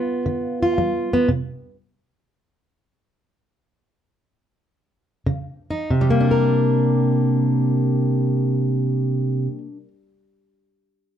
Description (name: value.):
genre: blues.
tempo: free time.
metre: none.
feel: none.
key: unclear.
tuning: A4 = 438 Hz.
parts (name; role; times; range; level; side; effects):
fingerpicked plugged-in steel-string acoustic guitar; solo; 0.0-1.8, 5.3-9.9 s; C3 to Bb4; -18 LUFS; equal; none.
room: moderate studio reverb, RT60 0.7 s.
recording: dark, warm production.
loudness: -18 LUFS.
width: side -9 dB against mid.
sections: 0.0-5.9 A section; 5.9-11.2 B section.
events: slowing down 1.3-5.9; stop 1.3-5.3.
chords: 0.0 G7; 1.3 N.C.; 5.3 Dbsus2; 5.9 Csus2.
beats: free time.